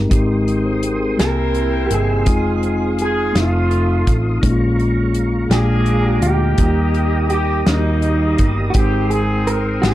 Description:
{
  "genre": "slow gospel",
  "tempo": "56 BPM (dotted quarters)",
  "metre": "6/8",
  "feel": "straight",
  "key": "Ab major",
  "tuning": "A4 = 441 Hz",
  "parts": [
    { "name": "mellow tine electric piano", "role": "accompaniment", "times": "0.0-9.9 s", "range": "Ab2 to G5", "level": "-20 LUFS", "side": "left 2 dB", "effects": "none" },
    { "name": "dark French horn section", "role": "sustained chords", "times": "0.0-9.9 s", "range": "E3 to D5", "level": "-31 LUFS", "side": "right 2 dB", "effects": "none" },
    { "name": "hollow-body short-scale fingered electric bass", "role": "bass", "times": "0.0-9.9 s", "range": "F1 to Eb2", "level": "-19 LUFS", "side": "equal", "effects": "none" },
    { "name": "tonewheel organ", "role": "sustained chords", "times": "0.1-9.9 s", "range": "Ab3 to E6", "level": "-28 LUFS", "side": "right 2 dB", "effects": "slow rotary speaker, overdrive, chorus vibrato" },
    { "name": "natural country drum kit", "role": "drums", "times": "0.1-9.9 s", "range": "hi-hat, kick drum, snare drum", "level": "-18 LUFS", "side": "equal", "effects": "none" },
    { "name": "mellow electric guitar", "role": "melody", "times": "1.2-9.9 s", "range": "Eb4 to Bb4", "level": "-22 LUFS", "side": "right 4 dB", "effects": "spring reverb" },
    { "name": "warm horn section", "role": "melody", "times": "1.2-9.9 s", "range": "G3 to G5", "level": "-25 LUFS", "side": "left 2 dB", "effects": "none" }
  ],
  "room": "little or no reverb",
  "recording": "dry, close 1970s-style studio recording",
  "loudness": "-14 LUFS",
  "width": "side -14 dB against mid",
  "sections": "0.0-9.9 A section",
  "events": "none",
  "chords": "0.0 Abmaj7; 1.2 C7; 2.3 Fm7; 3.4 F7; 4.4 Bbm7; 5.5 Bb7; 6.6 Eb; 8.7 Abmaj7",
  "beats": "| 0.11 1.19 | 2.27 3.35 | 4.43 5.51 | 6.59 7.67 | 8.75 9.83"
}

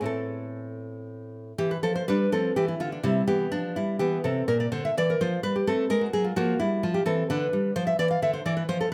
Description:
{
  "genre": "classical, baroque-style dance for nylon-string guitar",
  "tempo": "78-87 BPM (dotted quarters)",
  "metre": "6/8",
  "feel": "rubato",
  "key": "unclear",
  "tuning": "A4 = 443 Hz",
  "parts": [
    { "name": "nylon-string guitar", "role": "solo", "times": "0.0-8.9 s", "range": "A2 to F5", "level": "-27 LUFS", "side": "equal", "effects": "none" }
  ],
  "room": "moderate recital hall reverb, RT60 1.6 s",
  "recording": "none",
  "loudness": "-26 LUFS",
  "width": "mono",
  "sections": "0.0-1.6 A section; 1.6-8.9 A section",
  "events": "none",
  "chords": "0.1 Am; 1.6 Em7; 2.3 Dm11; 3.0 C; 4.5 Bbadd9; 5.2 F; 5.9 F#maj9; 6.6 Fmaj9; 7.3 Bdim/D; 8.0 Dm13",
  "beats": "| 0.06 0.83 | 1.59 2.33 | 3.04 3.77 | 4.49 5.20 | 5.90 6.60 | 7.30 7.99 | 8.69"
}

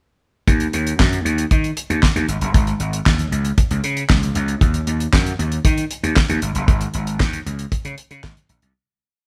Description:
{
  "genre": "early-eighties boogie funk",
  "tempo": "116 BPM",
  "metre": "4/4",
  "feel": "straight",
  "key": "unclear",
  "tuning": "A4 = 440 Hz",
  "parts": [
    { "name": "gritty slap bass", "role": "bass", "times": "0.5-8.7 s", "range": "Gb1 to Eb3", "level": "-23 LUFS", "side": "equal", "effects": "overdrive" },
    { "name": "damped 70s drum kit", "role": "drums", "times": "0.5-8.7 s", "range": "handclaps, hi-hat, kick drum, snare drum", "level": "-20 LUFS", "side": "equal", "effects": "none" }
  ],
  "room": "moderate stone room reverb, RT60 1.0 s",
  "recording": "band playing live in one room",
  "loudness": "-19 LUFS",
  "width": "mono",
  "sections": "0.5-8.8 breakdown",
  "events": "fade-out 6.7-8.8",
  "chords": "none",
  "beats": "| 0.47 0.99 1.51 2.03 | 2.54 3.06 3.58 4.09 | 4.61 5.13 5.65 6.16 | 6.68 7.20 7.72 8.23"
}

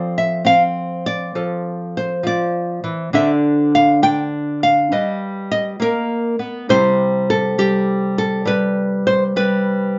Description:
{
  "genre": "solo jazz",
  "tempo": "68 BPM",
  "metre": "4/4",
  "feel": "swing 67% on 8ths",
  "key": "C major",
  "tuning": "A4 = 439 Hz",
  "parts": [
    { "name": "nylon-string guitar", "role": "solo", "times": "0.0-10.0 s", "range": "C3 to G5", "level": "-18 LUFS", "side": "equal", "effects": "none" }
  ],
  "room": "wet studio ambience, RT60 0.5 s",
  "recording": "heard from further back in the room, nothing above 7.6 kHz",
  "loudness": "-18 LUFS",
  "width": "mono",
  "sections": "0.0-10.0 A section",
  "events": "none",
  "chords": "0.0 Fmaj7; 3.1 D5; 4.9 G7alt; 6.7 Cmaj7",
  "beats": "0.45 1.34 2.23 | 3.12 4.01 4.90 5.79 | 6.68 7.57 8.45 9.34"
}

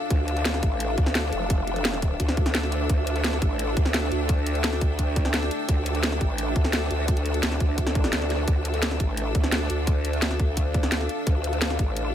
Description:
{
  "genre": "dark technical drum and bass",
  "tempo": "172 BPM",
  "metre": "4/4",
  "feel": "straight",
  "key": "D minor",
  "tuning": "A4 = 440 Hz",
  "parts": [
    { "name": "deep dark ambient pad", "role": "sustained chords", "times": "0.0-12.1 s", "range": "D4 to G5", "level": "-31 LUFS", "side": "left 1 dB", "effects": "chorus, built-in reverb, sidechain pumping" },
    { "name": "bright studio string section", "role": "texture", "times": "0.0-12.1 s", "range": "D4 to E6", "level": "-33 LUFS", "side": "equal", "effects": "sidechain pumping" },
    { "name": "growl bass", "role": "bass", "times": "0.1-12.1 s", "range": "F1 to D2", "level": "-27 LUFS", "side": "equal", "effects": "chorus, overdrive, sidechain pumping" },
    { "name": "drum and bass drum kit", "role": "drums", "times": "0.1-12.0 s", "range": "hi-hat, snare drum", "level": "-28 LUFS", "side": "equal", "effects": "overdrive" },
    { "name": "electronic kick drum", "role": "drums", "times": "0.1-11.9 s", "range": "none", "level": "-23 LUFS", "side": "equal", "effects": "overdrive" },
    { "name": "swell", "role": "sound effects", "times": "7.9-8.5 s", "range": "none", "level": "-38 LUFS", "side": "right 5 dB", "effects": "none" }
  ],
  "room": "digital ambience",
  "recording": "none",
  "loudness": "-22 LUFS",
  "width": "side -10 dB against mid",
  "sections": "0.0-12.1 A section",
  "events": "swell 7.9-8.5",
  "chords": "0.0 Dmadd9",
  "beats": "| 0.10 0.45 0.80 1.15 | 1.50 1.85 2.20 2.55 | 2.90 3.24 3.59 3.94 | 4.29 4.64 4.99 5.34 | 5.69 6.04 6.38 6.73 | 7.08 7.43 7.78 8.13 | 8.48 8.82 9.17 9.52 | 9.87 10.22 10.57 10.92 | 11.27 11.62 11.96"
}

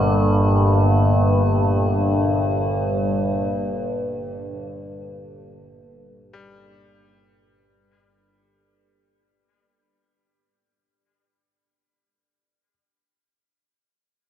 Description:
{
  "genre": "dark ambient drone",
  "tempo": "free time",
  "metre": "none",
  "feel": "none",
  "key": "G minor",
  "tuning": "A4 = 443 Hz",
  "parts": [
    { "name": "dark analog pad", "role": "sustained chords", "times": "0.0-8.0 s", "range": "G3 to A5", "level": "-30 LUFS", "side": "equal", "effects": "none" },
    { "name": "overtone-sweeping drone", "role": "drone", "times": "0.0-8.1 s", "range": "G1 to G2", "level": "-18 LUFS", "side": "equal", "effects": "chorus, built-in reverb, phaser" },
    { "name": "metallic inharmonic drone", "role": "texture", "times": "0.0-8.0 s", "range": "Bb3", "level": "-32 LUFS", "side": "left 3 dB", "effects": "chorus, built-in reverb" },
    { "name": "bright grand piano", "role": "arpeggios", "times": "6.3-12.7 s", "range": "G3", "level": "-53 LUFS", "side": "left 4 dB", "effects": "none" }
  ],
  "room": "wet huge ambient reverb, RT60 8.3 s",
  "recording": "in a vast, echoing space",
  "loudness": "-17 LUFS",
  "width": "side -10 dB against mid",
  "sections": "0.0-8.0 A section",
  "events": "fade-out on synth drone 0.0-8.0; fade-out 0.0-8.0",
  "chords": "0.0 Gmadd9",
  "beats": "free time"
}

